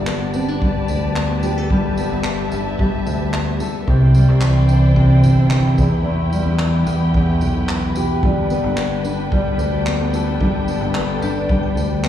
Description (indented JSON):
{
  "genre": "acoustic pop",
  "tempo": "110 BPM",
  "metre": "4/4",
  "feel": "straight",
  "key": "G major",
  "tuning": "A4 = 440 Hz",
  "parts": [
    { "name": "nylon-string guitar", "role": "accompaniment", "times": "0.0-12.1 s", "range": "E2 to A4", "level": "-18 LUFS", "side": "equal", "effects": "none" },
    { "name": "warm studio string section", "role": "sustained chords", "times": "0.0-12.1 s", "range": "D4 to A5", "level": "-28 LUFS", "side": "equal", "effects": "none" },
    { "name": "fingered electric bass", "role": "bass", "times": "0.0-12.1 s", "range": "G1 to E2", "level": "-20 LUFS", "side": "equal", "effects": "none" },
    { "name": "unplugged drum kit", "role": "drums", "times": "0.1-12.1 s", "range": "handclaps, kick drum, tambourine", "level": "-24 LUFS", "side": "equal", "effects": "none" },
    { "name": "vibraphone with hard mallets", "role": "second line", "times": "11.0-12.1 s", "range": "G4 to G5", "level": "-28 LUFS", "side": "left 1 dB", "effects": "slapback echo" }
  ],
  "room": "studio reverb",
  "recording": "live gig heard through the venue's PA, recital hall reverb",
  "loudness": "-15 LUFS",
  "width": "side -11 dB against mid",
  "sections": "0.0-12.1 A section",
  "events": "none",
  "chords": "0.0 Gadd9; 3.9 Cadd9; 5.8 Em; 8.2 Gadd9"
}